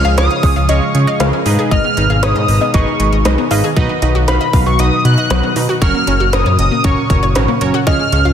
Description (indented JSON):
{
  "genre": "synth-pop",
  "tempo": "117 BPM",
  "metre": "4/4",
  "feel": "straight",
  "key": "unclear",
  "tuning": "A4 = 440 Hz",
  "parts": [
    { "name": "octave-doubled lead", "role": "melody", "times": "0.0-8.3 s", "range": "Cb6 to Gb6", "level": "-18 LUFS", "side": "equal", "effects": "chorus, phaser, digital delay, shimmer reverb" },
    { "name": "warbly dusty pluck", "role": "second line", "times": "0.0-3.6, 7.9-8.3 s", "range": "Db5 to F5", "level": "-22 LUFS", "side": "left 3 dB", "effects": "chorus, digital delay, shimmer reverb" },
    { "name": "warm analog keys", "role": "accompaniment", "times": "0.0-8.3 s", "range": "Db4 to F5", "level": "-21 LUFS", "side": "right 5 dB", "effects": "chorus, shimmer reverb" },
    { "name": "chorused pulse-width pad", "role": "sustained chords", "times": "0.0-8.3 s", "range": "Ab2 to Ab4", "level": "-20 LUFS", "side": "left 1 dB", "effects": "shimmer reverb" },
    { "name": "analog pluck", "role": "arpeggios", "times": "0.0-8.3 s", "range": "F3 to F5", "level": "-22 LUFS", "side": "left 2 dB", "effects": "chorus, digital delay, shimmer reverb" },
    { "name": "chorused synth bass", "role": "bass", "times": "0.0-8.3 s", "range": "Gb1 to Db3", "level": "-15 LUFS", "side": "equal", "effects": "none" },
    { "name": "organic electronic drum kit", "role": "drums", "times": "0.2-8.2 s", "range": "hi-hat, kick drum, snare drum", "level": "-18 LUFS", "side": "equal", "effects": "overdrive" }
  ],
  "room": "light reverb, digital ambience",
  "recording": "dense, heavily limited modern master",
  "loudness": "-11 LUFS",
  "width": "side -8 dB against mid",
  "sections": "0.0-8.3 A section",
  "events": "none",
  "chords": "0.0 Db; 1.5 Abm; 3.8 Cb; 5.8 Gb"
}